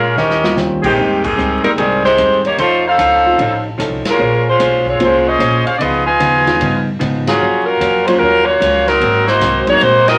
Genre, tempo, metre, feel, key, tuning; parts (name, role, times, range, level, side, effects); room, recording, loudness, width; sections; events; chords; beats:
jazz, big band swing; 149 BPM; 4/4; swing 66% on 8ths; Ab major; A4 = 445 Hz
clear saxophone section; melody; 0.0-10.2 s; Eb3 to Ab5; -14 LUFS; equal
vintage hollow-body jazz guitar; accompaniment; 0.0-10.1 s; Gb2 to C5; -23 LUFS; equal
warm trumpet section; stabs; 0.0-0.9 s; Ab4 to G5; -21 LUFS; equal
upright bass; bass; 0.0-10.2 s; Ab1 to Bb2; -26 LUFS; equal
swinging big-band drum kit; drums; 0.2-10.1 s; crash cymbal, hi-hat, kick drum, ride cymbal, snare drum; -28 LUFS; equal
warm baby grand piano; accompaniment; 0.4-9.8 s; Eb3 to C5; -22 LUFS; equal
wet small room reverb, RT60 0.5 s; vinyl crackle; -14 LUFS; mono
1.0-10.2 A section
drum fill 0.2-0.6; band accent 1.2, 4.0, 7.2, 10.0
0.2 Eb13; 1.0 Abmaj7; 2.6 F7b13; 4.2 Bbm9; 5.8 Db9; 7.4 Gbmaj7; 9.0 Ab9
0.16 0.57 | 0.97 1.37 1.77 2.18 | 2.58 2.98 3.38 3.79 | 4.19 4.59 4.99 5.39 | 5.80 6.20 6.60 7.00 | 7.40 7.80 8.21 8.61 | 9.01 9.41 9.81